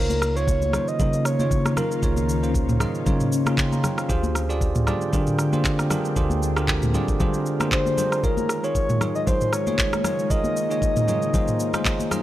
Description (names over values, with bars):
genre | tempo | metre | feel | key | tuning
amapiano | 116 BPM | 4/4 | swing 55% on 16ths | unclear | A4 = 440 Hz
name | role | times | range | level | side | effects
breathy flute-like synth lead | melody | 0.0-2.5, 7.7-12.1 s | Bb4 to Eb5 | -26 LUFS | left 1 dB | chorus, analog delay
bell-like tine electric piano | accompaniment | 0.0-12.2 s | Db3 to C6 | -27 LUFS | right 2 dB | none
ethereal airy pad | sustained chords | 0.8-12.2 s | Db3 to G5 | -30 LUFS | left 2 dB | ensemble chorus, built-in reverb, phaser, sidechain pumping
sub bass with octave | bass | 0.0-8.0 s | Db2 to D3 | -25 LUFS | equal | none
smooth R&B drum kit | drums | 0.1-12.2 s | handclaps, kick drum, rim click, shaker, toms | -24 LUFS | equal | none
congas | percussion | 0.1-12.2 s | none | -31 LUFS | left 4 dB | none
room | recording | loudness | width
little or no reverb | dry, gritty hardware recording, transformer saturation | -20 LUFS | side -14 dB against mid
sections
0.0-12.2 A section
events
none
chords
0.0 Db69; 4.1 Bb13/D; 8.2 Eb7sus4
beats
0.48 0.99 1.51 | 2.03 2.54 3.06 3.58 | 4.10 4.61 5.13 5.65 | 6.17 6.68 7.20 7.72 | 8.23 8.75 9.27 9.79 | 10.30 10.82 11.34 11.86